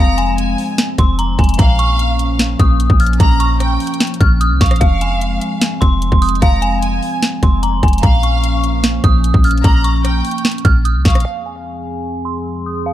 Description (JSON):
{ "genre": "hip hop, trap", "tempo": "149 BPM", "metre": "4/4", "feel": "half-time", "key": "F minor", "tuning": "A4 = 440 Hz", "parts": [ { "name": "dark detuned synth bell", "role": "melody", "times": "0.0-12.9 s", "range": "F5 to F6", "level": "-20 LUFS", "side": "equal", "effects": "chorus, phaser, low-pass filter, tape echo" }, { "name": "warm symphonic violin section", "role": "second line", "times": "0.0-11.2 s", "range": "F5 to Bb5", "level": "-24 LUFS", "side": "left 2 dB", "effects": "tape echo" }, { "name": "dark analog pad", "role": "sustained chords", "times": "0.0-12.9 s", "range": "F2 to Ab4", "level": "-22 LUFS", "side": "equal", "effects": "chorus, low-pass filter" }, { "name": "warm 808-style bass", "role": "bass", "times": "0.0-11.2 s", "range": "F1 to C2", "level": "-15 LUFS", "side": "equal", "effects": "none" }, { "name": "trap drum kit", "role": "drums", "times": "0.2-11.2 s", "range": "hi-hat, kick drum, rim click, snare drum", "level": "-14 LUFS", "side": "equal", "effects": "overdrive" } ], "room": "little or no reverb", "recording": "dark, warm production", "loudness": "-12 LUFS", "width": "side -13 dB against mid", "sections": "0.0-11.3 A section; 11.3-12.9 B section", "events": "filter sweep 11.3-12.9", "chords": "0.0 Fm; 1.6 Bbm; 4.8 Fm; 8.0 Bbm; 11.3 Fm" }